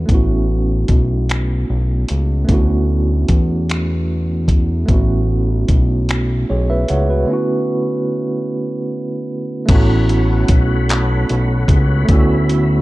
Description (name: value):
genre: slow six-eight R&B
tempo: 50 BPM (dotted quarters)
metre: 6/8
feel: straight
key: A major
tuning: A4 = 440 Hz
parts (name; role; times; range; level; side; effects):
- tine electric piano; accompaniment; 0.0-12.8 s; D3 to F#5; -20 LUFS; right 2 dB; medium tremolo
- fat analog bass; bass; 0.0-12.8 s; A1 to E2; -16 LUFS; equal; none
- dusty soul sampler-style drum kit; drums; 0.1-12.7 s; crash cymbal, finger snaps, handclaps, hi-hat, kick drum; -15 LUFS; equal; none
- tonewheel organ; sustained chords; 9.7-12.8 s; F#4 to B5; -25 LUFS; left 3 dB; overdrive, chorus vibrato, slow rotary speaker
room: digital ambience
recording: dark, warm production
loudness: -14 LUFS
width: side -19 dB against mid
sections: 0.0-9.7 A section; 9.7-12.8 B section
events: break 7.3-9.7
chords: 0.1 A69; 2.5 Dmaj13; 4.9 A69; 7.3 Dmaj13; 9.7 A69; 12.1 Dmaj13